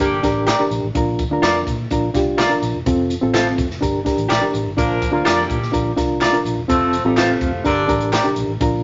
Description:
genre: uptempo 1960s-style soul.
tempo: 125 BPM.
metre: 4/4.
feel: straight.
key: Bb major.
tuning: A4 = 440 Hz.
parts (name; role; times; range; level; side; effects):
mellow horn section; second line; 0.0-0.4, 4.8-8.1 s; Bb2 to Bb4; -24 LUFS; equal; none.
reed electric piano; accompaniment; 0.0-8.8 s; C4 to Bb4; -22 LUFS; equal; medium tremolo.
vintage muted fingered electric bass; bass; 0.0-8.8 s; E1 to Bb2; -28 LUFS; equal; none.
swinging big-band drum kit; drums; 0.0-8.7 s; hi-hat, kick drum, snare drum; -27 LUFS; equal; none.
congas; percussion; 0.0-8.7 s; none; -42 LUFS; equal; none.
tambourine and handclaps; percussion; 0.0-8.5 s; none; -34 LUFS; equal; none.
electric guitar through a small old amp; stabs; 0.5-8.3 s; C4 to D5; -21 LUFS; equal; none.
room: moderate small room reverb, RT60 0.6 s.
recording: nothing above 7.6 kHz.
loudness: -18 LUFS.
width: mono.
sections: 0.0-8.8 A section.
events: none.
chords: 0.0 Gm; 0.9 Bb; 2.9 F; 3.8 Gm; 4.8 Bb; 6.7 F; 7.7 Gm.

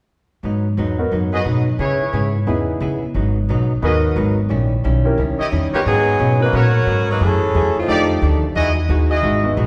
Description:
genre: jazz, big band swing.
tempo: 178 BPM.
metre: 4/4.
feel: swing 63% on 8ths.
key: G# minor.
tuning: A4 = 436 Hz.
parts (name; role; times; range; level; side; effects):
archtop guitar, miked and amplified; accompaniment; 0.4-9.7 s; F2 to G#4; -26 LUFS; equal; none.
upright bass; bass; 0.4-9.7 s; G#1 to C#3; -20 LUFS; equal; none.
warm concert grand piano; accompaniment; 1.0-9.6 s; G#3 to D5; -26 LUFS; equal; none.
clear trumpet section; stabs; 1.3-9.5 s; G#3 to D#5; -25 LUFS; equal; none.
clear saxophone section; melody; 5.7-8.2 s; E3 to C#5; -20 LUFS; equal; none.
room: wet recital hall reverb, RT60 1.6 s.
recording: recorded in a church or concert hall.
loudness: -18 LUFS.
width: mono.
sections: 0.4-5.9 A section; 5.9-9.7 B section.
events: none.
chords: 0.4 G#m7; 1.8 C#m7; 3.1 G#m7; 4.5 D#7b9; 5.9 G#m11; 7.2 F#m9; 7.9 F13; 8.6 Emaj9.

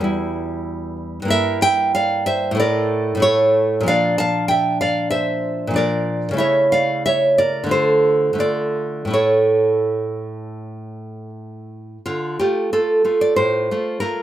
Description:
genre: romantic piece for solo classical guitar.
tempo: 79-99 BPM.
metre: 4/4.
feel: rubato.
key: D minor.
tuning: A4 = 440 Hz.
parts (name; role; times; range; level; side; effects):
nylon-string guitar; solo; 0.0-14.2 s; E2 to A5; -17 LUFS; right 1 dB; none.
room: light reverb.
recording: none.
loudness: -16 LUFS.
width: side -12 dB against mid.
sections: 0.0-12.1 A section; 12.1-14.2 B section.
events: none.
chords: 0.1 Em; 1.3 Em7b5/G; 2.6 A; 3.9 Bb; 6.4 A/C#; 7.7 Dm; 9.1 A; 12.1 Dm.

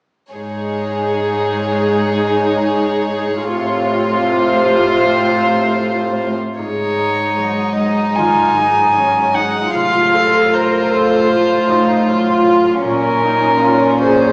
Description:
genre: cinematic.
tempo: 77 BPM.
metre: 4/4.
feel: rubato.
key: unclear.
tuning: A4 = 440 Hz.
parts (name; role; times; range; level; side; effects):
warm symphonic violin section; second line; 0.3-6.4 s; F4 to Db5; -17 LUFS; equal; none.
dark symphonic viola section; accompaniment; 0.3-14.3 s; C3 to Bb4; -18 LUFS; equal; none.
dark chamber cello section; bass; 0.3-14.3 s; Ab2 to Bb2; -21 LUFS; equal; none.
rich violin; melody; 6.6-14.3 s; Bb4 to Ab5; -15 LUFS; equal; none.
warm symphonic violin section; melody; 6.6-14.3 s; Db4 to F4; -17 LUFS; equal; none.
concert harp; arpeggios; 6.6-14.3 s; Ab2 to C5; -24 LUFS; equal; none.
room: wet recital hall reverb, RT60 1.4 s.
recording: recorded in a church or concert hall, small speaker sound.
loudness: -12 LUFS.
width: side -37 dB against mid.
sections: 0.3-6.6 A section; 6.6-14.3 B section.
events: none.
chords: 0.3 Absus4; 3.4 F/A; 6.6 Absus4; 9.7 F/A; 12.8 Bbmadd9.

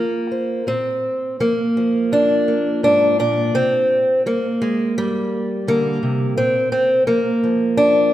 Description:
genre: folk, solo fingerstyle acoustic guitar.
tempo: 84 BPM.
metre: 4/4.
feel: rubato.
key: Bb mixolydian.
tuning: A4 = 438 Hz.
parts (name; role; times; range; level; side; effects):
fingerpicked acoustic archtop guitar; solo; 0.0-8.1 s; F2 to C5; -16 LUFS; equal; none.
room: wet concert hall reverb, RT60 1.9 s.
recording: none.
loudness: -16 LUFS.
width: side -13 dB against mid.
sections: 0.7-8.1 A section.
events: none.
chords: 0.0 Fm; 0.7 Bb; 3.5 C5; 6.4 Bb.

